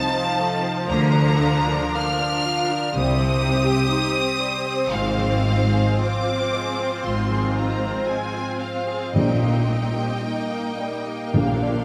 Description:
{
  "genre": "classical, slow romantic movement for symphony orchestra",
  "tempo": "53-63 BPM",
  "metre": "4/4",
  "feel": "rubato",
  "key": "unclear",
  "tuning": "A4 = 444 Hz",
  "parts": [
    { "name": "clear studio violin section", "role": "melody", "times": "0.0-11.8 s", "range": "F5 to F6", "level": "-30 LUFS", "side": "equal", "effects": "none" },
    { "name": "rich studio violin section", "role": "second line", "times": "0.0-11.8 s", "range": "G3 to F5", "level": "-30 LUFS", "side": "equal", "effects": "none" },
    { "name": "bright studio viola section", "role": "accompaniment", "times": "0.0-11.8 s", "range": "F3 to G4", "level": "-31 LUFS", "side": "equal", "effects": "none" },
    { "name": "concert harp", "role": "arpeggios", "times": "0.0-11.8 s", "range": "Ab2 to C6", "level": "-31 LUFS", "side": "equal", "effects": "none" },
    { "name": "bright studio double bass section", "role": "bass", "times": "0.9-11.8 s", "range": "Ab1 to D2", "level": "-29 LUFS", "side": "equal", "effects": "none" },
    { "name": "clear studio cello section", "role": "bass", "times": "0.9-11.8 s", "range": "Ab2 to D3", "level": "-27 LUFS", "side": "equal", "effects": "none" },
    { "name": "timpani", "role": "percussion", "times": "9.2-11.8 s", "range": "Bb2", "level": "-26 LUFS", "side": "equal", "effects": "none" }
  ],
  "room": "moderate recital hall reverb, RT60 1.7 s",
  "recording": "close, detailed microphones",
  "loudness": "-22 LUFS",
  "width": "mono",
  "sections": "0.0-11.8 A section",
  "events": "none",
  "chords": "0.0 F7/C; 0.9 Bb/D; 3.0 Cm; 4.9 Fm/Ab; 9.1 Eb/Bb; 11.3 Bb",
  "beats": "| 0.90 1.97 2.96 3.93 | 4.92 6.01 7.04 8.07 | 9.14 10.24 11.34"
}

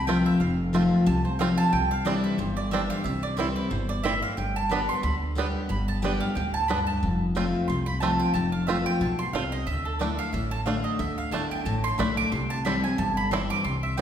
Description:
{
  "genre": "bluegrass",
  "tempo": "181 BPM",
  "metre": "4/4",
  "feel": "swing 56% on 8ths",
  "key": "C major",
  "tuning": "A4 = 442 Hz",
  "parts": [
    { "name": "picked steel-string acoustic guitar", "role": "accompaniment", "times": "0.0-14.0 s", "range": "F2 to G4", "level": "-26 LUFS", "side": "left 2 dB", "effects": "none" },
    { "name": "mandolin", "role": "stabs", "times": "0.0-14.0 s", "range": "A4 to D6", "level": "-29 LUFS", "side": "right 2 dB", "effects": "none" },
    { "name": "upright bass", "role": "bass", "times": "0.0-14.0 s", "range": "F1 to D2", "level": "-31 LUFS", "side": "equal", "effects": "none" },
    { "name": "bluegrass banjo", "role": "melody", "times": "0.1-14.0 s", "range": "G3 to F4", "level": "-32 LUFS", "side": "right 5 dB", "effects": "none" }
  ],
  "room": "wet recital hall reverb, RT60 1.5 s",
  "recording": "recorded in a church or concert hall",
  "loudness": "-23 LUFS",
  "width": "side -9 dB against mid",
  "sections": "0.0-4.4 A section; 4.4-14.0 A section",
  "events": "mandolin solo 0.0-14.0",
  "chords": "0.0 F; 1.7 Cadd9; 3.1 C; 4.4 G; 7.0 F; 9.7 Dsus2; 12.3 C",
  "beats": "0.08 | 0.41 0.74 1.07 1.40 | 1.73 2.06 2.39 2.72 | 3.05 3.38 3.71 4.05 | 4.38 4.71 5.04 5.37 | 5.70 6.03 6.36 6.69 | 7.03 7.36 7.69 8.02 | 8.35 8.68 9.01 9.34 | 9.67 10.01 10.34 10.67 | 11.00 11.33 11.66 11.99 | 12.32 12.65 12.98 13.32 | 13.65 13.98"
}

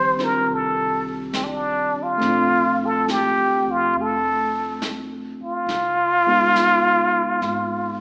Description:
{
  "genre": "jazz ballad",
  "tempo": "69 BPM",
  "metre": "4/4",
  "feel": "swing 69% on 8ths",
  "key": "Bb major",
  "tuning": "A4 = 440 Hz",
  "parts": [
    { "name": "trumpet with plunger mute", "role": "melody", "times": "0.0-8.0 s", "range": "C4 to C5", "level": "-21 LUFS", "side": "equal", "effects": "none" },
    { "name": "bell-like tine electric piano", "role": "accompaniment", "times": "0.0-8.0 s", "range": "Eb3 to G4", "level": "-29 LUFS", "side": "equal", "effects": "none" },
    { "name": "upright bass", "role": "bass", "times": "0.0-8.0 s", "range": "F1 to F2", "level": "-41 LUFS", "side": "equal", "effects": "none" },
    { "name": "vintage brush drum kit", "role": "drums", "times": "0.2-8.0 s", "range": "brushed snare drum, hi-hat, snare drum", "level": "-35 LUFS", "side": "equal", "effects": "none" }
  ],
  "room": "wet recital hall reverb, RT60 1.4 s",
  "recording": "recorded in a church or concert hall, small speaker sound",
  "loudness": "-20 LUFS",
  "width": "mono",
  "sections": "0.0-8.0 A section",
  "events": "none",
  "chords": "0.0 Fsus2; 2.2 Bbmaj9; 5.7 Db9",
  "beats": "0.47 1.33 | 2.20 3.07 3.94 4.80 | 5.67 6.54 7.41"
}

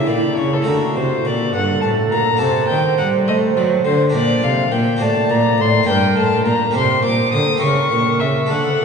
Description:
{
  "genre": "classical, baroque-style sonata movement with continuo",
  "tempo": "69 BPM (dotted quarters)",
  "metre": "6/8",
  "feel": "straight",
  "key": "unclear",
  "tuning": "A4 = 440 Hz",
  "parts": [
    { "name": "dark violin", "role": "melody", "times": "0.0-8.8 s", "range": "A4 to Eb6", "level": "-20 LUFS", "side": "left 5 dB", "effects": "none" },
    { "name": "mellow wooden flute", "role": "second line", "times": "0.0-8.8 s", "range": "Eb4 to D5", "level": "-21 LUFS", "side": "right 5 dB", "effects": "none" },
    { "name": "harpsichord", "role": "accompaniment", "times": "0.0-8.8 s", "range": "G2 to C5", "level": "-21 LUFS", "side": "left 2 dB", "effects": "none" },
    { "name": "dark cello", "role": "bass", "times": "0.0-8.8 s", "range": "G2 to A3", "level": "-20 LUFS", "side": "right 2 dB", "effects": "none" }
  ],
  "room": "wet cathedral reverb, RT60 5.5 s",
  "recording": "recorded in a church or concert hall, nothing above 10.5 kHz",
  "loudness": "-14 LUFS",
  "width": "side -5 dB against mid",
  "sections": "0.0-8.8 A section",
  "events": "none",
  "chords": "0.0 C#dim7; 0.7 D; 2.4 D7/C; 4.1 Gm/Bb; 5.0 D7/A; 5.9 Gm; 6.8 Cm; 7.6 C#dim7",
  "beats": "| 0.66 1.53 | 2.41 3.28 | 4.15 5.02 | 5.89 6.76 | 7.63 8.51"
}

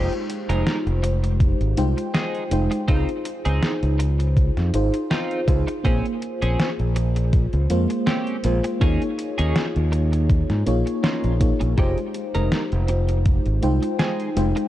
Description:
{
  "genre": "vaporwave",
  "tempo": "81 BPM",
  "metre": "4/4",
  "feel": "swing 54% on 16ths",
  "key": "F minor",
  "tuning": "A4 = 439 Hz",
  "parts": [
    { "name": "FM electric piano with soft pad layer", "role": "accompaniment", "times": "0.0-14.7 s", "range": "Ab3 to G5", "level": "-25 LUFS", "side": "left 1 dB", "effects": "tremolo, wide subtle chorus, analog delay" },
    { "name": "twelve-string electric guitar", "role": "riff", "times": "0.0-14.6 s", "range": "Ab3 to Bb4", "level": "-30 LUFS", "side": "right 2 dB", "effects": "analog chorus, vintage 12-bit sampler grit, analog delay" },
    { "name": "modern bright fingered electric bass", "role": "bass", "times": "0.0-14.5 s", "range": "F1 to Ab2", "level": "-21 LUFS", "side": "equal", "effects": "none" },
    { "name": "detuned 8-bit digital drum machine", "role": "drums", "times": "0.1-14.7 s", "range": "hi-hat, snare drum", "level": "-26 LUFS", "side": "equal", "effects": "studio reverb" },
    { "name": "electronic kick drum", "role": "drums", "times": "1.4-13.4 s", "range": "none", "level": "-20 LUFS", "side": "equal", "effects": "overdrive, studio reverb" }
  ],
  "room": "little or no reverb",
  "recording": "dark, warm production, cassette tape",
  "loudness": "-19 LUFS",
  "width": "side -14 dB against mid",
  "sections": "0.0-14.7 A section",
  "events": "none",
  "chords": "0.0 Fm9; 2.9 Dbmaj9; 5.9 Bbm9; 8.8 Eb7sus4; 11.8 Fm9",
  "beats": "0.67 1.41 2.15 | 2.89 3.63 4.37 5.11 | 5.85 6.59 7.33 8.07 | 8.81 9.56 10.30 11.04 | 11.78 12.52 13.26 14.00"
}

